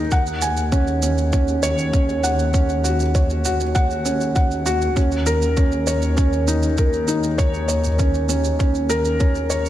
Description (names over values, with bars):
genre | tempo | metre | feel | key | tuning
piano and strings electronica | 99 BPM | 4/4 | straight | unclear | A4 = 440 Hz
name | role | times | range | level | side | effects
felt-muted upright piano | riff | 0.0-9.7 s | Db4 to Ab5 | -21 LUFS | equal | ping-pong delay
muted chamber double bass section | bass | 0.0-9.7 s | Eb2 | -22 LUFS | equal | sidechain pumping
electronic kick drum | drums | 0.1-9.3 s | none | -18 LUFS | equal | none
shaker | drums | 0.1-9.7 s | none | -30 LUFS | right 6 dB | none
room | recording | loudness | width
light reverb, studio reverb | none | -17 LUFS | side -12 dB against mid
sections
0.0-9.7 A section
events
none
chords
0.1 Gbsus2/Eb; 5.0 Eb5